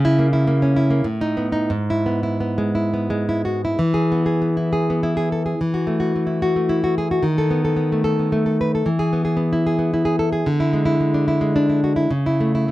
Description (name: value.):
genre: romantic piece for solo classical guitar.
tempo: 85-116 BPM.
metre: 3/4.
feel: rubato.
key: E major.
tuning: A4 = 440 Hz.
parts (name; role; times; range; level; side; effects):
nylon-string guitar; solo; 0.0-12.7 s; G#2 to B4; -17 LUFS; equal; none.
room: light reverb.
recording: dark, warm production.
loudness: -17 LUFS.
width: side -16 dB against mid.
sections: 0.0-3.8 A section; 3.8-12.7 B section.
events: none.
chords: 0.0 C#m6; 1.1 B7/A; 1.7 E/G#; 3.8 E; 5.6 F#m7/E; 7.3 B7/D#; 8.9 E; 10.5 E7/D; 12.1 A/C#.